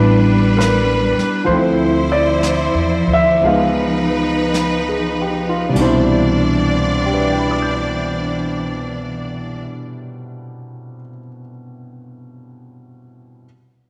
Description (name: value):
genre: jazz ballad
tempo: 46-72 BPM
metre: 4/4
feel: swing 69% on 8ths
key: C major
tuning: A4 = 440 Hz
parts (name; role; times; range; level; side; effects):
- warm baby grand piano; accompaniment; 0.0-13.5 s; B2 to G6; -20 LUFS; equal; none
- clear symphonic string section; sustained chords; 0.0-9.6 s; E3 to D5; -22 LUFS; equal; none
- upright bass; bass; 0.0-9.6 s; A1 to E2; -24 LUFS; equal; tube saturation
- jazz brush drum kit; drums; 0.6-6.8 s; brushed snare drum, crash cymbal, hi-hat, kick drum, snare drum; -32 LUFS; equal; none
room: wet echo chamber reverb, RT60 2.0 s, small room reverb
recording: none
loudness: -16 LUFS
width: mono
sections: 0.0-5.8 A section; 5.8-10.9 B section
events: slowing down 0.0-5.8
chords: 0.0 A9sus4; 1.5 Dm9; 3.4 Db9; 5.8 Cmaj9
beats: 0.59 | 1.48 2.42 3.43 4.54 | 5.76 7.06 8.35 9.64